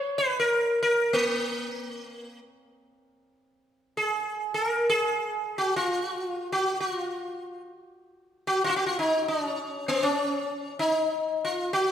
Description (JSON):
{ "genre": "indian classical, Hindustani", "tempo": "free time", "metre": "none", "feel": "none", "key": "Bb raga bhairavi", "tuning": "A4 = 442 Hz", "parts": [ { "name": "sitar", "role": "solo", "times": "0.0-11.9 s", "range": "Bb3 to Db5", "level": "-25 LUFS", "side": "equal", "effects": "none" } ], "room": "wet recital hall reverb, RT60 1.6 s", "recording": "recorded in a church or concert hall", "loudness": "-25 LUFS", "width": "side -9 dB against mid", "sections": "0.0-3.7 A section; 3.7-11.9 A section", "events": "none", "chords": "none" }